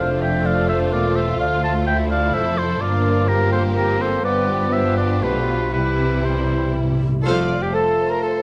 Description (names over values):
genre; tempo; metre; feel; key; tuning
quick classical-period movement for symphony orchestra; 115-129 BPM; 3/4; rubato; F major; A4 = 441 Hz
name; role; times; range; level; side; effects
warm studio violin section; melody; 0.0-8.4 s; E4 to D5; -34 LUFS; equal; none
dark clarinet; second line; 0.0-8.4 s; F4 to B4; -29 LUFS; equal; none
hollow concert flute; second line; 0.0-8.3 s; G4 to Bb5; -30 LUFS; equal; none
rich studio violin section; second line; 0.0-7.5 s; Bb3 to F5; -33 LUFS; equal; none
warm oboe; second line; 0.0-8.4 s; F4 to A5; -26 LUFS; equal; none
mellow bassoon; accompaniment; 0.0-7.0 s; E3 to F3; -32 LUFS; equal; none
rich studio viola section; accompaniment; 0.0-7.5 s; G3 to A4; -32 LUFS; equal; none
warm French horn section; sustained chords; 0.0-8.4 s; G3 to F4; -30 LUFS; equal; none
dark studio double bass section; bass; 0.0-7.7 s; E1 to D2; -27 LUFS; equal; none
warm studio cello section; bass; 0.0-7.7 s; D2 to C3; -28 LUFS; equal; none
timpani; percussion; 5.7-7.2 s; C3; -27 LUFS; equal; none
room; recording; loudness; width
light reverb; close, detailed microphones; -19 LUFS; mono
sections
0.0-7.3 A section; 7.3-8.4 B section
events
timpani fill 5.7-7.3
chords
0.0 F; 1.4 Dm; 2.8 Gm7; 4.2 G7; 5.7 C; 7.3 F